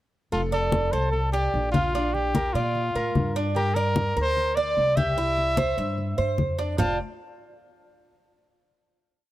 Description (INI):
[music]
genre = latin, Cuban son and guajira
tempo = 148 BPM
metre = 4/4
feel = straight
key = F major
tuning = A4 = 444 Hz
[part]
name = bright trumpet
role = melody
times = 0.3-7.0 s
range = F4 to A5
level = -26 LUFS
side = left 1 dB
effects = none
[part]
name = Cuban tres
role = arpeggios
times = 0.3-7.0 s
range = D4 to E5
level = -28 LUFS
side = right 3 dB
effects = none
[part]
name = upright bass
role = bass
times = 0.3-7.0 s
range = F1 to Bb2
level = -28 LUFS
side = equal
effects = none
[part]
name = congas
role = percussion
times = 0.3-6.9 s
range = none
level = -27 LUFS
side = left 2 dB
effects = none
[sound]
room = light reverb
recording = none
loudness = -22 LUFS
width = side -14 dB against mid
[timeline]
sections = 0.3-6.8 verse; 6.8-8.4 final chord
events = none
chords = 0.3 F6; 1.9 Bb; 3.6 Gm; 5.2 C; 6.8 F5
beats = | 0.33 0.73 1.14 1.54 | 1.95 2.35 2.75 3.16 | 3.56 3.96 4.37 4.77 | 5.18 5.58 5.98 6.39 | 6.79